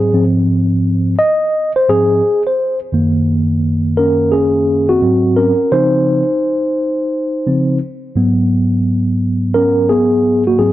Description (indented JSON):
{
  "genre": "hip hop",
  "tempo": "86 BPM",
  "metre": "4/4",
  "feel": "swing 62% on 16ths",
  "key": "unclear",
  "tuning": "A4 = 440 Hz",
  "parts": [
    { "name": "mellow tine electric piano", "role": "solo", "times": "0.0-10.7 s", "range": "Gb2 to Eb5", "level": "-12 LUFS", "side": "equal", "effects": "medium stereo tremolo" }
  ],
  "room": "light reverb, digital ambience",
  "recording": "none",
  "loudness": "-12 LUFS",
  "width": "side -14 dB against mid",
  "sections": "0.0-2.9 A section; 2.9-10.7 B section",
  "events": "tine electric piano solo 0.0-2.9, 2.9-10.7",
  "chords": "0.1 Ab6; 2.9 Gb6; 5.0 Ab7; 5.7 Dbmaj9; 8.2 Abm11"
}